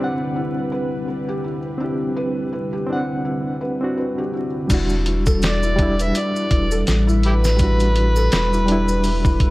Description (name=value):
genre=trip hop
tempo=83 BPM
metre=4/4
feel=swing 57% on 16ths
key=E minor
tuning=A4 = 440 Hz
part: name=bright reed electric piano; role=accompaniment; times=0.0-9.5 s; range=G3 to F#5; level=-24 LUFS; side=equal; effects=fast tremolo, vintage 12-bit sampler grit, tape echo
part: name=string machine, cellos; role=sustained chords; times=0.0-9.5 s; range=D3 to D6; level=-29 LUFS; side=equal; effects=phaser, ensemble chorus
part: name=felt-muted upright piano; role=arpeggios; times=0.0-9.5 s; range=E4 to B4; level=-28 LUFS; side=left 2 dB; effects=vintage 12-bit sampler grit, tape echo
part: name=bowed-like drone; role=texture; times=0.0-4.7 s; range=B4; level=-38 LUFS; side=left 1 dB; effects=built-in reverb
part: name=warm sub bass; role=bass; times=4.7-9.5 s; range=E1 to A1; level=-19 LUFS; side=equal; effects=none
part: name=dusty soul sampler-style drum kit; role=drums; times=4.7-9.5 s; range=crash cymbal, hi-hat, kick drum, snare drum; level=-20 LUFS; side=equal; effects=none
part: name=maracas and triangle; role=percussion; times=4.7-9.4 s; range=none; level=-34 LUFS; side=right 1 dB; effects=none
part: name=overdriven harmonica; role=melody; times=5.5-9.5 s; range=E4 to E5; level=-24 LUFS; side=equal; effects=vintage 12-bit sampler grit, dub echo
room=digital ambience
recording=vinyl crackle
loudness=-17 LUFS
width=side -19 dB against mid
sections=0.0-4.7 A section; 4.7-9.5 B section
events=none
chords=0.0 D7sus4; 4.7 Em9